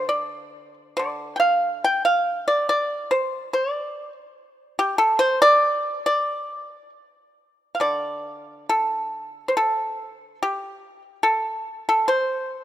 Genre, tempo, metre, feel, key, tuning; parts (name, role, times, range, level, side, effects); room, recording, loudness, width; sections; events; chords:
chinese traditional, Chinese solo plucked strings; 67-74 BPM; 2/4; rubato; D yu mode; A4 = 440 Hz
pipa; solo; 0.0-12.6 s; D3 to G5; -20 LUFS; equal
light reverb, small room ambience; rough home demo mix; -20 LUFS; side -12 dB against mid
0.0-7.8 A section; 7.8-12.6 B section